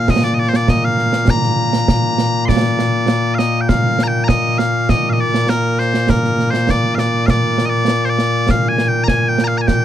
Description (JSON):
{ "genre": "scottish traditional, Scottish pipe music", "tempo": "100 BPM", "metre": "4/4", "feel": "straight", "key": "Bb major", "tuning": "A4 = 440 Hz", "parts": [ { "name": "loud bright bagpipes", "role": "melody", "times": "0.0-9.8 s", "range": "Bb2 to C6", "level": "-15 LUFS", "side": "left 1 dB", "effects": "none" }, { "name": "concert snare drum and concert bass drum", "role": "drums", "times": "0.1-9.8 s", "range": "none", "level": "-18 LUFS", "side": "right 2 dB", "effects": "none" } ], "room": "light reverb", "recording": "dark, warm production", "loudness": "-13 LUFS", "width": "side -11 dB against mid", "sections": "0.0-2.5 A section; 2.5-9.8 A section", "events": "none", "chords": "none", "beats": "| 0.09 0.69 1.29 1.89 | 2.49 3.09 3.69 4.29 | 4.89 5.49 6.09 6.69 | 7.29 7.89 8.49 9.09 | 9.69" }